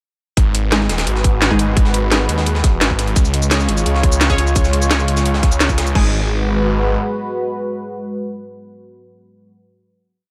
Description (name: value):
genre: dark technical drum and bass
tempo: 172 BPM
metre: 4/4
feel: straight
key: G# dorian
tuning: A4 = 440 Hz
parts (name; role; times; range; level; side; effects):
- dark analog pad; sustained chords; 0.4-9.5 s; G#3 to C#5; -24 LUFS; equal; chorus, sidechain pumping
- snarling distorted saw bass; bass; 0.4-7.0 s; D#1 to D#2; -20 LUFS; equal; distortion, overdrive, sidechain pumping
- breakbeat sampler-style drum kit; drums; 0.4-5.9 s; hi-hat, snare drum; -29 LUFS; equal; high-pass filter on hats, high-pass filter on snare
- drum and bass drum kit; drums; 0.4-6.0 s; crash cymbal, hi-hat, shaker, snare drum; -22 LUFS; equal; none
- electronic kick drum; drums; 0.4-6.0 s; none; -18 LUFS; equal; overdrive
- orchestra-hit-like synth stab; stabs; 0.7-10.1 s; G#3 to C#5; -26 LUFS; equal; built-in reverb, tape echo
room: light reverb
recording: none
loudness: -16 LUFS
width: mono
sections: 0.4-6.0 drop; 6.0-8.7 final chord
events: drop 0.4-6.0; band accent 5.6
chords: 0.4 G#m7; 3.2 C#; 6.0 G#m7